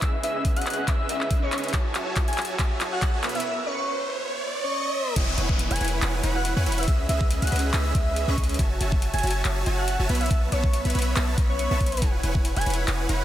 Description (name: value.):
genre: future bass.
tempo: 140 BPM.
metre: 4/4.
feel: swing 54% on 16ths, half-time.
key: E major.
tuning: A4 = 439 Hz.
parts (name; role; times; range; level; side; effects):
airy dreamy lead; melody; 0.0-13.2 s; C#5 to G#5; -30 LUFS; equal; chorus, sidechain pumping, dub echo.
supersaw chords; riff; 0.0-13.2 s; B3 to B5; -29 LUFS; right 1 dB; sidechain pumping, low-pass filter.
electronic kick drum; drums; 0.0-12.4 s; none; -24 LUFS; equal; none.
trap drum kit; drums; 0.0-13.2 s; crash cymbal, handclaps, hi-hat; -31 LUFS; left 1 dB; none.
riser and downlifter; sound effects; 0.6-8.6 s; none; -33 LUFS; right 1 dB; none.
warm 808-style bass; bass; 5.2-13.2 s; E1 to E2; -26 LUFS; equal; sidechain pumping.
room: light reverb, digital ambience.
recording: dense, heavily limited modern master.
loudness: -22 LUFS.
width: side -12 dB against mid.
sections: 0.0-5.2 A section; 5.2-13.2 B section.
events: build-up 0.0-5.2; drum fill 0.0-3.4; riser 0.6-5.2; break 3.4-5.2; drop 5.2-13.2.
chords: 0.0 C#m7; 1.7 F#m7; 3.2 Bsus24; 5.2 E69; 6.9 C#m7; 8.6 F#m7; 10.1 B9sus4; 12.0 E69.